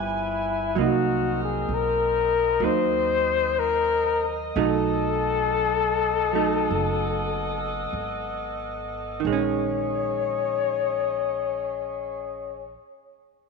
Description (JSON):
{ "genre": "jazz ballad", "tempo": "43-66 BPM", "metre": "4/4", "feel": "swing 66% on 8ths", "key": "Bb minor", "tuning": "A4 = 436 Hz", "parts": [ { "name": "warm flugelhorn", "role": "melody", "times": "0.0-12.8 s", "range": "E4 to Db5", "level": "-24 LUFS", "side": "left 8 dB", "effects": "slapback echo" }, { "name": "vintage hollow-body jazz guitar", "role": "accompaniment", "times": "0.0-12.9 s", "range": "Eb3 to Eb4", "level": "-28 LUFS", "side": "right 14 dB", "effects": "none" }, { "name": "mellow saxophone section", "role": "sustained chords", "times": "0.0-12.7 s", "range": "F3 to Ab5", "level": "-32 LUFS", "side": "right 1 dB", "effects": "none" }, { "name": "upright bass", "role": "bass", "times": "0.0-12.7 s", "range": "F#1 to Eb2", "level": "-33 LUFS", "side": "right 3 dB", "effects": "none" } ], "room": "moderate echo chamber reverb, RT60 2.4 s", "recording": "1960s-style stereo with parts hard left and right", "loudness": "-22 LUFS", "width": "side -4 dB against mid", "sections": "0.8-9.2 A section; 9.2-13.5 B section", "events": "slowing down 0.8-9.2", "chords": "0.0 G7b9; 0.8 Cm7b5; 4.5 B7; 9.2 Bbm7" }